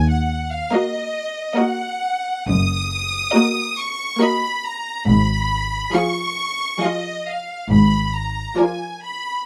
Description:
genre	classical, slow romantic movement for string orchestra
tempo	69 BPM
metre	3/4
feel	rubato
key	Eb minor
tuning	A4 = 440 Hz
part	rich symphonic violin section	melody	0.0-9.5 s	Eb5 to Eb6	-25 LUFS	equal	none
part	clear symphonic double bass section	bass	0.0-8.4 s	Gb1 to Eb2	-24 LUFS	equal	none
part	rich symphonic cello section	bass	0.0-8.4 s	Eb2 to Ab2	-21 LUFS	equal	none
part	rich studio violin section	second line	0.7-9.3 s	Ab4 to F5	-28 LUFS	equal	none
part	clear symphonic viola section	accompaniment	0.7-9.3 s	F3 to Gb4	-22 LUFS	equal	none
room	little or no reverb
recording	close, detailed microphones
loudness	-21 LUFS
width	mono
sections	0.0-9.5 A section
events	none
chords	0.0 Ebm; 2.5 Ebm/Gb; 5.1 Fdim/Ab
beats	0.74 1.58 | 2.47 3.34 4.21 | 5.07 5.93 6.82 | 7.70 8.57

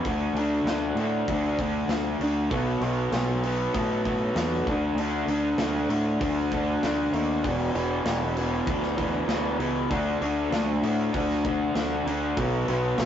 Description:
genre	quiet-loud alternative rock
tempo	98 BPM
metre	4/4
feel	straight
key	unclear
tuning	A4 = 440 Hz
part	raw garage guitar	riff	0.0-13.1 s	E2 to D4	-25 LUFS	left 1 dB	overdrive
part	growling fingered electric bass	bass	0.0-13.1 s	E1 to A2	-30 LUFS	equal	overdrive
part	big rock drum kit	drums	0.1-13.1 s	hi-hat, kick drum, snare drum	-33 LUFS	equal	none
room	light reverb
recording	rough rehearsal-room recording, tube saturation, nothing above 7.7 kHz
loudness	-24 LUFS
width	side -9 dB against mid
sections	0.0-13.1 A section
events	none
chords	0.1 D5; 2.5 B5; 4.7 D5; 7.4 E5; 9.9 D5; 12.4 B5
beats	| 0.05 0.67 1.28 1.90 | 2.52 3.13 3.75 4.36 | 4.98 5.59 6.21 6.83 | 7.44 8.06 8.67 9.29 | 9.90 10.52 11.14 11.75 | 12.37 12.98

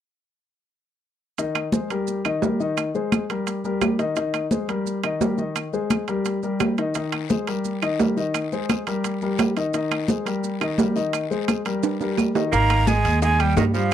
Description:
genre	Afro-Cuban jazz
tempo	172 BPM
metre	4/4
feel	straight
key	Ab major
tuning	A4 = 441 Hz
part	warm concert grand piano	accompaniment	1.4-13.9 s	Eb3 to Eb5	-24 LUFS	left 3 dB	none
part	congas	percussion	1.4-13.9 s	none	-26 LUFS	left 1 dB	none
part	maracas	percussion	1.4-13.9 s	none	-39 LUFS	right 20 dB	none
part	timbales	percussion	1.4-13.7 s	none	-27 LUFS	right 8 dB	none
part	claves	percussion	1.6-13.6 s	none	-32 LUFS	right 20 dB	none
part	guiro	percussion	7.0-13.9 s	none	-39 LUFS	left 16 dB	none
part	breathy jazz flute	melody	12.5-13.9 s	Eb5 to Bb5	-22 LUFS	right 2 dB	none
part	bright tenor saxophone	second line	12.5-13.9 s	Eb3 to Bb3	-25 LUFS	right 9 dB	none
part	upright bass	bass	12.5-13.9 s	Ab1 to G2	-20 LUFS	right 1 dB	none
part	bongos	percussion	12.5-13.9 s	none	-30 LUFS	left 7 dB	none
room	moderate small room reverb, RT60 0.5 s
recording	dry, close 1970s-style studio recording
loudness	-20 LUFS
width	side -10 dB against mid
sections	1.4-12.5 A section; 12.5-13.9 B section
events	drum fill 11.8-12.5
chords	1.4 Abadd9; 2.1 Eb; 2.8 Abadd9; 3.5 Eb; 4.2 Abadd9; 4.9 Eb; 5.6 Abadd9; 6.3 Eb; 7.0 Abadd9; 7.7 Eb; 8.3 Abadd9; 9.0 Eb; 9.7 Abadd9; 10.4 Eb; 11.1 Abadd9; 11.8 Eb; 12.5 Ab5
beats	| 1.38 1.73 2.08 2.42 | 2.77 3.12 3.47 3.82 | 4.17 4.51 4.86 5.21 | 5.56 5.91 6.26 6.61 | 6.95 7.30 7.65 8.00 | 8.35 8.70 9.04 9.39 | 9.74 10.09 10.44 10.79 | 11.13 11.48 11.83 12.18 | 12.53 12.88 13.22 13.57 | 13.92

